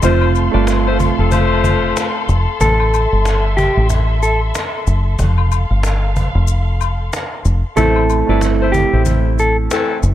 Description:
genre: hip hop, boom-bap hip-hop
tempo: 93 BPM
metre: 4/4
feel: swing 59% on 16ths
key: A minor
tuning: A4 = 438 Hz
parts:
  - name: dark baby grand piano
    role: accompaniment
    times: 0.0-2.5, 7.8-10.1 s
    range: A3 to F4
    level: -19 LUFS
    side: right 11 dB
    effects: cassette tape, high-pass filter, low-pass filter
  - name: warm studio string section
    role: sustained chords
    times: 0.0-7.8 s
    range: A4 to C6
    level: -23 LUFS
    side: left 3 dB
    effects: high-pass filter, low-pass filter
  - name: mellow saxophone section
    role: stabs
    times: 0.0-2.1, 7.8-10.0 s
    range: E3 to D5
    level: -20 LUFS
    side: left 7 dB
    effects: high-pass filter, low-pass filter, analog delay
  - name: deep dub fingered electric bass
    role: bass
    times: 0.0-10.1 s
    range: F1 to A1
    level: -15 LUFS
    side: equal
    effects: none
  - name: cajon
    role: drums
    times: 0.0-10.1 s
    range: none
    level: -23 LUFS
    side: equal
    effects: none
  - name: maracas and woodblock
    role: percussion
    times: 0.0-10.1 s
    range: none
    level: -27 LUFS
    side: left 15 dB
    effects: none
  - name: mellow electric guitar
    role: melody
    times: 2.6-9.6 s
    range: G4 to A4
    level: -18 LUFS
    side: equal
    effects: high-pass filter, low-pass filter, analog delay
room: small room ambience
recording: none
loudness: -13 LUFS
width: side -12 dB against mid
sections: 0.0-7.8 A section; 7.8-10.1 A section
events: break 6.5-7.8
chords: 0.0 F; 2.6 Am; 5.2 F; 7.8 Am

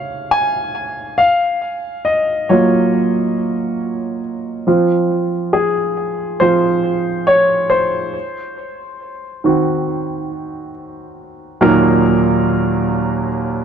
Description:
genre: pop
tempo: 69 BPM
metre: 4/4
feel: straight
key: unclear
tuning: A4 = 441 Hz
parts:
  - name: warm grand piano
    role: solo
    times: 0.0-13.6 s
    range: Eb2 to Ab5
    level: -15 LUFS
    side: right 1 dB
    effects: tape echo
room: light reverb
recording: dark, warm production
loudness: -14 LUFS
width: side -8 dB against mid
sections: 0.0-11.6 A section; 11.6-13.6 B section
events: grand piano solo 0.0-11.6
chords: 0.0 Dbmaj7; 1.2 Gbmaj7; 4.7 Fm; 8.1 Ebm6; 11.6 Ebmadd9

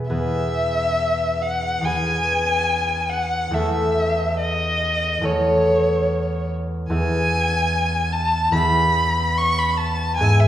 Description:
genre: classical, romantic duo for violin and harp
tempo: 71 BPM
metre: 4/4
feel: uneven beats, rubato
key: E major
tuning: A4 = 440 Hz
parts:
  - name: concert harp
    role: accompaniment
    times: 0.0-10.5 s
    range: E2 to E5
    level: -21 LUFS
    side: equal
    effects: none
  - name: warm violin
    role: melody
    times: 0.1-10.5 s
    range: C#5 to C#6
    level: -20 LUFS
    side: equal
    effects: none
room: wet recital hall reverb, RT60 1.4 s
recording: recorded in a church or concert hall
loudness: -18 LUFS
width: side -12 dB against mid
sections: 0.1-10.5 A section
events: none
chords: 0.1 E; 3.5 A/E; 6.9 E

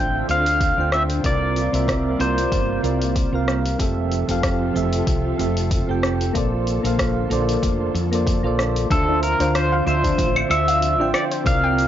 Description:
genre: sunset chillout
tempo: 94 BPM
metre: 4/4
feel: swing 55% on 16ths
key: unclear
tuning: A4 = 439 Hz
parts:
  - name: pedal steel guitar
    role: melody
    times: 0.0-2.8, 8.9-11.9 s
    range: A4 to G5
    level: -22 LUFS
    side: equal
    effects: tape echo
  - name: soft electric-piano-like synth keys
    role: accompaniment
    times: 0.0-11.9 s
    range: C3 to G5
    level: -24 LUFS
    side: right 2 dB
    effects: chorus, tremolo, auto-pan, tape echo
  - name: soft string machine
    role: sustained chords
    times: 0.0-11.9 s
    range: C3 to A4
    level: -28 LUFS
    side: equal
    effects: ensemble chorus
  - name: woody fretless electric bass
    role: bass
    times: 0.0-11.9 s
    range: F1 to F2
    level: -24 LUFS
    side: equal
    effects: none
  - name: deep house drum kit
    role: drums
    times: 0.3-11.9 s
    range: claves, hi-hat, rim click, shaker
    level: -27 LUFS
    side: left 1 dB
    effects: none
  - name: electronic kick drum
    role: drums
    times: 0.6-11.6 s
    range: none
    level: -24 LUFS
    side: equal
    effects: none
  - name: soft round pluck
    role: arpeggios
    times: 9.1-11.8 s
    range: D4 to G5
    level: -28 LUFS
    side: left 3 dB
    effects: lush chorus, tape echo
room: light reverb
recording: dry, gritty hardware recording, nothing above 7.5 kHz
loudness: -18 LUFS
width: side -11 dB against mid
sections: 0.0-8.9 A section; 8.9-11.9 B section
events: none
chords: 0.0 Dm7; 1.2 C7sus4; 3.8 Fmaj7; 6.4 Bbmaj7; 8.9 Dm7

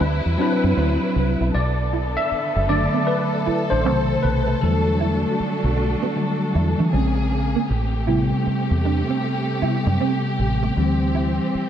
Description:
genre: R&B, neo-soul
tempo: 78 BPM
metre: 4/4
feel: swing 64% on 16ths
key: unclear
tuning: A4 = 442 Hz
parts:
  - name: hollow-body jazz guitar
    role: second line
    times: 0.0-11.6 s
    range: A3 to E4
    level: -29 LUFS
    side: right 9 dB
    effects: ensemble chorus
  - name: warm studio string section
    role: sustained chords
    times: 0.0-11.7 s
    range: C3 to B4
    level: -26 LUFS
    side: right 1 dB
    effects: none
  - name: deep dub fingered electric bass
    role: bass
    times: 0.0-11.6 s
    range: F#1 to E3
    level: -22 LUFS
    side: equal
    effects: none
  - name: tine electric piano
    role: accompaniment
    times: 0.4-11.7 s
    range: C3 to E5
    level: -22 LUFS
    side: left 2 dB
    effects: ensemble chorus
room: moderate lush hall reverb, RT60 3.1 s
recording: dreamy mix soaked in reverb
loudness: -18 LUFS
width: side -9 dB against mid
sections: 0.0-1.5 A section; 1.5-11.7 B section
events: tine electric piano solo 1.5-11.7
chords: 0.0 D13; 1.5 Bm7; 3.8 B7b9; 4.6 Em11; 6.9 Bbm7; 7.7 Am7; 10.8 D9sus4

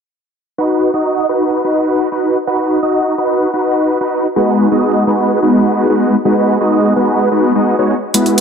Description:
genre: EDM, festival progressive house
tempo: 127 BPM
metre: 4/4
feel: straight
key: unclear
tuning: A4 = 439 Hz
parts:
  - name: big supersaw lead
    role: riff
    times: 0.6-8.4 s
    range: G#3 to D#5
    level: -11 LUFS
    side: equal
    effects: phaser, low-pass filter, digital delay
  - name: electronic hi-hat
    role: drums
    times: 8.1-8.4 s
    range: none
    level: -14 LUFS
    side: equal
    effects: overdrive
room: moderate lush hall reverb, RT60 2.4 s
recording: none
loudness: -11 LUFS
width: side -6 dB against mid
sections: 0.6-8.4 A section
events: none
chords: 0.6 B; 4.4 G#m7

